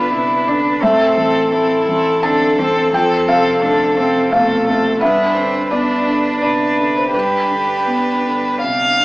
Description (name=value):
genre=neoclassical piano and strings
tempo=86 BPM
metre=3/4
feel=uneven beats, rubato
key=unclear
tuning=A4 = 441 Hz
part: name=dark violin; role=melody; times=0.0-9.0 s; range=A4 to F5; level=-16 LUFS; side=equal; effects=none
part: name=rich cello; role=second line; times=0.0-9.0 s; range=A3 to G4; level=-21 LUFS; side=right 2 dB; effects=none
part: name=felt-muted upright piano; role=accompaniment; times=0.0-9.0 s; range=F2 to A5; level=-18 LUFS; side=equal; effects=none
part: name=rich viola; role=accompaniment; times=0.0-9.0 s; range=C4 to D4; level=-23 LUFS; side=right 1 dB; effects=none
room=moderate large studio reverb, RT60 0.8 s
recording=band playing live in one room, small speaker sound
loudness=-13 LUFS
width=side -20 dB against mid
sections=0.0-9.0 A section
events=none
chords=0.0 G; 0.8 Am; 2.9 F; 5.0 G